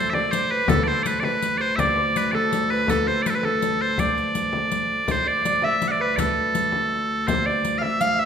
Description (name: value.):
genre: medieval dance.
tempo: 109 BPM (dotted quarters).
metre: 6/8.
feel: straight.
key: unclear.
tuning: A4 = 440 Hz.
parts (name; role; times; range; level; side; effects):
loud bright bagpipes; melody; 0.0-8.3 s; A4 to F#5; -22 LUFS; right 1 dB; none.
Celtic harp; second line; 0.0-8.3 s; A4 to F5; -28 LUFS; right 2 dB; none.
dark viola da gamba; drone; 0.0-8.3 s; D2; -30 LUFS; left 2 dB; none.
frame drum; percussion; 0.1-8.0 s; none; -28 LUFS; left 3 dB; none.
riq; percussion; 0.3-8.2 s; none; -31 LUFS; left 4 dB; none.
room: wet recital hall reverb, RT60 1.3 s.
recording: minimal, uncompressed stereo recording.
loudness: -20 LUFS.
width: side -7 dB against mid.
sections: 0.0-5.1 A section; 5.1-8.3 B section.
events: none.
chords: none.